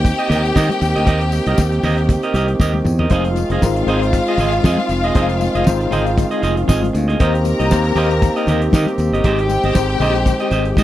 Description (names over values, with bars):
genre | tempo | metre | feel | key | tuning
disco | 117 BPM | 4/4 | swing 56% on 16ths | unclear | A4 = 440 Hz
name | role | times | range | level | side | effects
rich studio string section | second line | 0.0-10.8 s | F4 to Bb5 | -24 LUFS | left 4 dB | none
clean electric guitar | accompaniment | 0.0-10.8 s | F4 to Eb5 | -22 LUFS | right 4 dB | none
mellow French horn section | sustained chords | 0.0-10.8 s | Eb3 to G4 | -23 LUFS | right 2 dB | none
modern bright fingered electric bass | bass | 0.0-10.8 s | Fb1 to Eb3 | -18 LUFS | equal | none
damped 70s drum kit | drums | 0.0-10.8 s | hi-hat, kick drum, snare drum, toms | -16 LUFS | equal | none
congas | percussion | 0.1-10.8 s | none | -26 LUFS | left 3 dB | none
tambourine | percussion | 0.1-10.8 s | none | -38 LUFS | left 10 dB | none
tine electric piano | accompaniment | 3.1-10.8 s | Ab3 to C5 | -21 LUFS | left 4 dB | overdrive, fast stereo tremolo
room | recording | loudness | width
little or no reverb | dry, close 1970s-style studio recording | -14 LUFS | side -13 dB against mid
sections
0.0-10.8 A section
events
drum fill 2.6-3.1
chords
0.0 Cm7; 3.1 Fm7; 7.2 Cm7; 9.2 Abmaj7